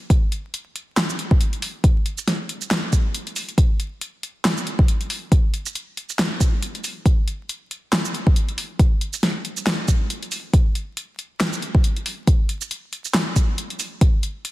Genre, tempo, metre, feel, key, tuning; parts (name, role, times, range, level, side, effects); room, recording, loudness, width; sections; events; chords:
dubstep; 138 BPM; 4/4; swing 57% on 16ths, half-time
deep house drum kit; drums; 0.1-14.5 s; handclaps, hi-hat, shaker, snare drum; -24 LUFS; equal
electronic kick drum; drums; 0.1-14.1 s; -16 LUFS; equal
light reverb; dense, heavily limited modern master, vinyl crackle; -19 LUFS; side -17 dB against mid
0.0-14.5 A section
break 3.1-3.6